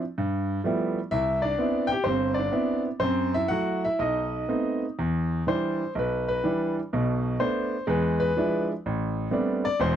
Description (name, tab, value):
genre	solo jazz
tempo	124 BPM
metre	4/4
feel	swing 68% on 8ths, rubato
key	unclear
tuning	A4 = 440 Hz
part	clear grand piano	solo	0.2-10.0 s	E1 to G5	-24 LUFS	equal	none
room	moderate booth ambience, RT60 0.2 s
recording	dry, close 1970s-style studio recording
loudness	-24 LUFS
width	side -9 dB against mid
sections	0.0-5.0 A section; 5.0-10.0 B section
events	grand piano solo 5.0-10.0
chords	0.2 G13; 1.1 Cmaj7; 3.0 F#m7b5; 4.0 B7b9; 5.0 Em7; 6.9 Bm7; 7.9 E7b9; 8.8 Am11